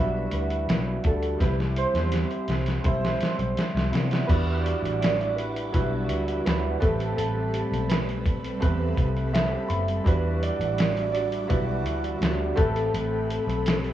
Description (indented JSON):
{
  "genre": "indie pop, bedroom pop",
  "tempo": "83 BPM",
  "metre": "4/4",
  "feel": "straight",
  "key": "E minor",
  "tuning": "A4 = 440 Hz",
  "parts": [
    { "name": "warbly lo-fi synth keys", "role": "melody", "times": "0.0-13.9 s", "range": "A4 to D5", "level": "-31 LUFS", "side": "right 2 dB", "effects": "wide subtle chorus, analog delay" },
    { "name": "bright upright piano", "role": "accompaniment", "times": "0.0-13.9 s", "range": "F#3 to B5", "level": "-33 LUFS", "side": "right 2 dB", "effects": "cassette tape" },
    { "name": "electric guitar through a small old amp", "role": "accompaniment", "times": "0.0-13.9 s", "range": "C3 to B4", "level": "-32 LUFS", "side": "equal", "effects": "wide subtle chorus, vibrato effect" },
    { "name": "vintage muted picked electric bass", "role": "bass", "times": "0.0-13.9 s", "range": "F#1 to C3", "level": "-28 LUFS", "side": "equal", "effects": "none" },
    { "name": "lo-fi sampler-style drum kit", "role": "drums", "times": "0.3-13.9 s", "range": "crash cymbal, hi-hat, kick drum, snare drum", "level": "-26 LUFS", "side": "equal", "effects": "none" },
    { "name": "string machine, cellos", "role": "sustained chords", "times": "4.3-13.9 s", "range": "G3 to D6", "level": "-36 LUFS", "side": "right 1 dB", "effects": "phaser, ensemble chorus" }
  ],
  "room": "light reverb",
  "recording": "worn, warbling old tape, cassette tape, warbly pitch drift, small room ambience",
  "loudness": "-23 LUFS",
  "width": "side -12 dB against mid",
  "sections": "0.0-4.3 A section; 4.3-13.9 B section",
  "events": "drum fill 1.4-4.3; upright piano fill 9.0-10.1",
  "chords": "0.0 Em9; 1.4 Cmaj7; 4.3 Em9; 6.8 Am9; 10.1 Em9; 12.6 Am9",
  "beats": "0.68 | 1.41 2.13 2.85 3.57 | 4.29 5.01 5.73 6.45 | 7.17 7.89 8.61 9.33 | 10.05 10.78 11.50 12.22 | 12.94 13.66"
}